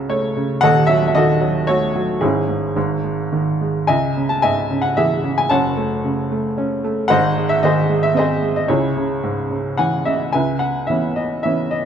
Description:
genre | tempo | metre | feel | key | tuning
classical, lyrical solo piano | 111 BPM | 3/4 | rubato | C# harmonic minor | A4 = 436 Hz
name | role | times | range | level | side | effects
clear upright piano | solo | 0.0-11.9 s | D#1 to A5 | -16 LUFS | equal | none
room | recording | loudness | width
moderate recital hall reverb, RT60 1.5 s | dark, warm production | -16 LUFS | side -8 dB against mid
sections
0.0-10.3 A section; 10.3-11.9 B section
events
upright piano fill 0.0-0.6, 9.5-10.3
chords
0.0 F#madd9/C#; 0.6 D#dim; 2.2 C#m/G#; 2.8 G#5; 3.9 C#madd9; 5.5 F#m; 7.1 G#; 8.7 C#m; 10.3 C#m7

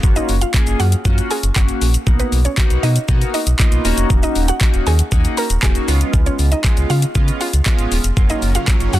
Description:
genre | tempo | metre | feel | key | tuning
dance-pop | 118 BPM | 4/4 | straight | F# major | A4 = 441 Hz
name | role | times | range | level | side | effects
chorused polysynth | accompaniment | 0.0-9.0 s | F#3 to G#4 | -22 LUFS | equal | sidechain pumping
sub bass with octave | bass | 0.0-9.0 s | D#1 to C#3 | -16 LUFS | equal | sidechain pumping
pop drum kit | drums | 0.0-9.0 s | handclaps, hi-hat, kick drum, shaker | -17 LUFS | equal | none
mallet-like synth pluck | melody | 0.2-9.0 s | B3 to A#5 | -25 LUFS | right 2 dB | chorus, sidechain pumping, digital delay
supersaw chords | sustained chords | 8.2-9.0 s | C#3 to A#4 | -30 LUFS | equal | sidechain pumping
room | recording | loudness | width
little or no reverb | dense, heavily limited modern master | -14 LUFS | side -14 dB against mid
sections
0.0-9.0 A section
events
drop 0.0-9.0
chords
0.0 F#maj7; 2.1 Bmaj7; 3.8 D#m7; 5.9 C#7; 8.2 F#maj7

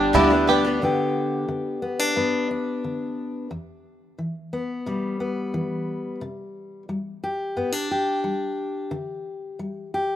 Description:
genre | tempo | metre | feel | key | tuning
indie folk with a building arrangement | 89 BPM | 4/4 | straight | G major | A4 = 440 Hz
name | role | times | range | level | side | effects
fingerpicked steel-string acoustic guitar | accompaniment | 0.0-10.2 s | E2 to G4 | -24 LUFS | left 2 dB | none
picked twelve-string acoustic guitar | accompaniment | 0.0-0.8 s | G2 to G4 | -23 LUFS | left 5 dB | none
bluegrass banjo | arpeggios | 0.0-0.8 s | D4 to G4 | -22 LUFS | right 7 dB | none
upright bass | bass | 0.0-0.8 s | G1 to D2 | -27 LUFS | equal | none
room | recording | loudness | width
light reverb, small room ambience | rough home demo mix | -23 LUFS | side -11 dB against mid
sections
0.8-10.2 A section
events
none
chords
0.0 G; 3.5 Em; 6.2 Csus2; 8.9 Dsus4

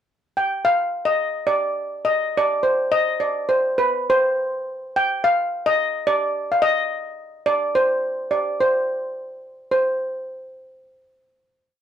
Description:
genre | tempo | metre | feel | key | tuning
klezmer | 106 BPM | 4/4 | straight | C harmonic minor | A4 = 440 Hz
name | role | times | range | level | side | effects
steel pan | solo | 0.4-10.0 s | B4 to G5 | -19 LUFS | equal | none
room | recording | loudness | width
light reverb | dry, close 1970s-style studio recording | -19 LUFS | side -9 dB against mid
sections
0.0-0.6 pickup bar; 0.6-9.7 A section; 9.7-11.8 final note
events
none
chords
none

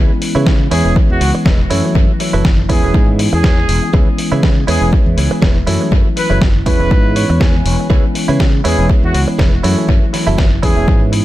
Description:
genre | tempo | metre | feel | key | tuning
filtered disco house | 121 BPM | 4/4 | swing 55% on 16ths | E major | A4 = 440 Hz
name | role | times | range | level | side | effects
bell-like tine electric piano | accompaniment | 0.0-11.2 s | E3 to E4 | -19 LUFS | equal | phaser, sidechain pumping, tape echo
direct-recorded clean electric guitar | riff | 0.0-11.1 s | E4 to G#5 | -22 LUFS | right 4 dB | sidechain pumping, tape echo
modern bright fingered electric bass | bass | 0.0-11.2 s | E1 to C#3 | -16 LUFS | equal | tube saturation, sidechain pumping
dusty soul sampler-style drum kit | drums | 0.2-11.2 s | hi-hat, snare drum | -22 LUFS | equal | sidechain pumping on cymbals, sidechain pumping on hats, tape echo
electronic kick drum | drums | 0.5-11.0 s | none | -12 LUFS | equal | overdrive
mellow trumpet section | melody | 0.7-11.0 s | F#4 to B4 | -22 LUFS | equal | sidechain pumping, tape echo
room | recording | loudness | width
little or no reverb | echo-heavy mix | -10 LUFS | side -15 dB against mid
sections
0.0-11.2 A section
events
clean electric guitar fill 6.9-7.9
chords
0.0 C#m7; 0.7 E6; 1.7 F#m7; 2.7 E6; 3.9 C#m7; 4.7 E6; 5.7 F#m7; 6.7 E6; 7.9 C#m7; 8.6 E6; 9.6 F#m7; 10.6 E6

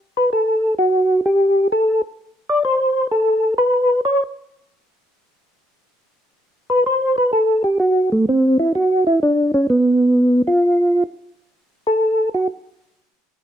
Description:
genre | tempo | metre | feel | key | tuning
jazz | 128 BPM | 4/4 | swing 68% on 8ths | unclear | A4 = 441 Hz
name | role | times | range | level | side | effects
percussive tonewheel organ | solo | 0.2-12.5 s | A3 to D5 | -15 LUFS | equal | slow rotary speaker, chorus vibrato
room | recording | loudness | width
moderate studio reverb, RT60 0.8 s | close, detailed microphones | -15 LUFS | side -9 dB against mid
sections
0.0-5.9 A section; 5.9-13.4 A section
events
tonewheel organ solo 0.0-5.9, 5.9-13.4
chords
none

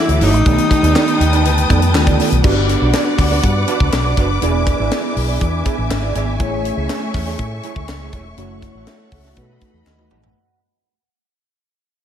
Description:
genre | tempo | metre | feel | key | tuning
polished 1980s jazz-funk pop | 121 BPM | 4/4 | straight | unclear | A4 = 440 Hz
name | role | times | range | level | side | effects
breathy alto saxophone | melody | 0.0-2.0 s | D#4 to E4 | -18 LUFS | equal | ping-pong delay
mellow tine electric piano | accompaniment | 0.0-10.6 s | D#3 to F#5 | -23 LUFS | left 1 dB | wide subtle chorus
warm symphonic string section | sustained chords | 0.0-10.4 s | A3 to D#6 | -23 LUFS | left 1 dB | none
mellow electric guitar | riff | 0.1-10.3 s | A3 to D5 | -24 LUFS | right 7 dB | analog chorus
vintage muted fingered electric bass | bass | 0.1-10.3 s | E1 to B2 | -18 LUFS | equal | none
tight funk drum kit | drums | 0.1-10.3 s | crash cymbal, hi-hat, kick drum, snare drum, toms | -19 LUFS | left 1 dB | none
group handclap | percussion | 1.0-10.0 s | none | -32 LUFS | left 2 dB | none
room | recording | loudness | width
moderate lush hall reverb, RT60 1.7 s | dreamy mix soaked in reverb | -13 LUFS | side -9 dB against mid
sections
0.0-2.4 A section; 2.4-10.4 B section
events
fade-out 2.4-10.4; drum fill 9.9-10.4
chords
0.5 B7alt; 2.4 Gmaj7; 4.4 E7; 6.4 Amaj7; 8.4 F#m7; 9.4 B7

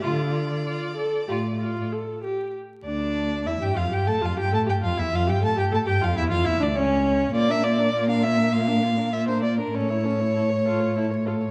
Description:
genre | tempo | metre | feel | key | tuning
quick classical-period movement for string quartet | 95-102 BPM | 4/4 | rubato | D minor | A4 = 439 Hz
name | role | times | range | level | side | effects
rich violin | melody | 0.0-11.5 s | C#4 to D5 | -36 LUFS | equal | none
warm violin | second line | 0.0-11.5 s | F4 to A5 | -28 LUFS | equal | none
warm viola | accompaniment | 0.0-11.3 s | Bb3 to A4 | -30 LUFS | equal | none
warm cello | bass | 0.0-11.5 s | C#2 to D3 | -27 LUFS | equal | none
room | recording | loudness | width
wet recital hall reverb, RT60 1.5 s | dark, warm production, vinyl crackle | -24 LUFS | mono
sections
0.0-2.5 A section; 2.5-11.5 A section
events
none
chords
0.0 Dm; 2.5 Dsus24; 3.8 Fadd9; 5.0 Fmaj9; 6.2 C#m; 7.3 Bb; 9.7 A

